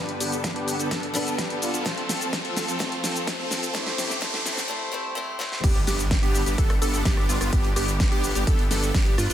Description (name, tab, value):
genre	EDM, festival progressive house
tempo	127 BPM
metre	4/4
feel	straight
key	G mixolydian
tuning	A4 = 440 Hz
part	picked old ladder-braced acoustic guitar	accompaniment	0.0-5.6 s	G2 to C5	-32 LUFS	left 2 dB	sidechain pumping, dub echo
part	rich symphonic string section	sustained chords	0.0-9.3 s	D3 to A4	-34 LUFS	left 1 dB	sidechain pumping
part	supersaw chords	riff	0.0-9.3 s	B3 to A4	-30 LUFS	right 1 dB	sidechain pumping, low-pass filter, dub echo
part	riser, swell and impact	sound effects	0.2-7.5 s	none	-34 LUFS	right 1 dB	none
part	big-room dance drum kit	drums	0.1-9.3 s	crash cymbal, hi-hat, rim click, shaker, snare drum	-29 LUFS	left 1 dB	studio reverb, soft clipping on snare
part	electronic kick drum	drums	0.4-9.0 s	none	-24 LUFS	equal	high-pass filter on kick, studio reverb, high-pass filter on room
part	plucky unison lead	arpeggios	5.6-9.3 s	F4 to A4	-30 LUFS	equal	sidechain pumping, dub echo
part	detuned saw bass	bass	5.6-9.3 s	G1 to G2	-28 LUFS	equal	sidechain pumping
room	light reverb, digital ambience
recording	dense, heavily limited modern master, high-pass filter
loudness	-22 LUFS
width	side -11 dB against mid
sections	0.0-5.6 A section; 5.6-9.3 B section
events	build-up 0.0-5.6; drum fill 0.0-4.7, 5.4; filter sweep on supersaw synth 0.0-5.6; filter sweep 0.0-5.6; riser 0.2-4.7; break 4.7-5.6; swell 4.7-5.6; drop 5.6-9.3; impact 5.6-7.5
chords	0.0 G; 1.9 F; 3.7 C; 5.6 G